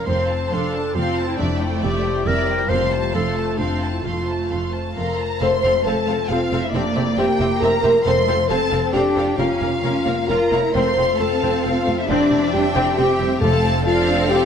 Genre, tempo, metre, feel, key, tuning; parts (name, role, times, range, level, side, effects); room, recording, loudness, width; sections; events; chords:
cinematic; 136 BPM; 3/4; straight; F major; A4 = 439 Hz
warm symphonic violin section; melody; 0.0-14.5 s; D5 to C6; -27 LUFS; left 2 dB
mellow clarinet; second line; 0.0-4.9 s; D4 to C5; -23 LUFS; left 1 dB
warm symphonic violin section; second line; 0.0-14.5 s; A4 to A5; -30 LUFS; left 1 dB
concert harp; arpeggios; 0.0-14.5 s; F2 to C5; -30 LUFS; left 9 dB
rich symphonic viola section; accompaniment; 0.1-14.5 s; G3 to Bb4; -27 LUFS; right 1 dB
warm French horn section; sustained chords; 0.1-14.5 s; A3 to C5; -21 LUFS; left 2 dB
rich symphonic double bass section; bass; 0.1-14.5 s; F1; -26 LUFS; right 3 dB
warm symphonic cello section; bass; 0.1-14.5 s; F2 to F4; -26 LUFS; right 2 dB
timpani; percussion; 1.4-3.3, 8.1-8.7, 12.1-14.0 s; F2; -28 LUFS; equal
wet scoring stage reverb, RT60 1.5 s; -17 LUFS; side -7 dB against mid
0.0-5.4 A section; 5.4-14.5 A section
0.1 F; 1.4 Cadd9/F; 2.7 F; 6.7 Cadd9/F; 8.1 F; 9.4 Bbm/F; 10.7 F; 12.1 Cadd9/F; 13.4 F